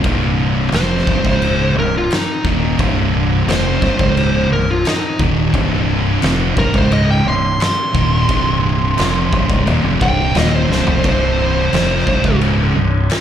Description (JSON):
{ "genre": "stoner and doom metal", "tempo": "87 BPM", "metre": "4/4", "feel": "straight", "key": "C phrygian", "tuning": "A4 = 439 Hz", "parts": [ { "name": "distorted electric guitar", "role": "riff", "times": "0.0-13.0 s", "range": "C2 to F3", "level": "-25 LUFS", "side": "equal", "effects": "overdrive, slapback echo" }, { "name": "thick fuzz guitar", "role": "riff", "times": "0.0-13.0 s", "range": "C2 to F3", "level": "-21 LUFS", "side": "left 8 dB", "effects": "distortion, slapback echo" }, { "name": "thick fuzz guitar", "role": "riff", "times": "0.0-13.0 s", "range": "C2 to F3", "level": "-20 LUFS", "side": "right 9 dB", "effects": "distortion, slapback echo" }, { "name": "fingered electric bass", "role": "bass", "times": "0.0-13.1 s", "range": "C1 to F1", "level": "-19 LUFS", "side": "equal", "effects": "tube saturation" }, { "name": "oversized low-tuned drum kit", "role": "drums", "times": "0.0-13.2 s", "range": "crash cymbal, kick drum, snare drum, toms", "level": "-20 LUFS", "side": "left 1 dB", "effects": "none" }, { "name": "fuzz lead guitar", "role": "melody", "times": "0.8-12.4 s", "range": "Eb4 to C6", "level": "-20 LUFS", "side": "equal", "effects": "distortion, slapback echo, tape echo" } ], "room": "little or no reverb", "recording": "live gig heard through the venue's PA, club reverb", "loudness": "-13 LUFS", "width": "side -10 dB against mid", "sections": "0.0-13.2 A section", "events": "lead electric guitar solo 0.0-13.2; drum fill 10.7-11.0", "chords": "0.0 Cm" }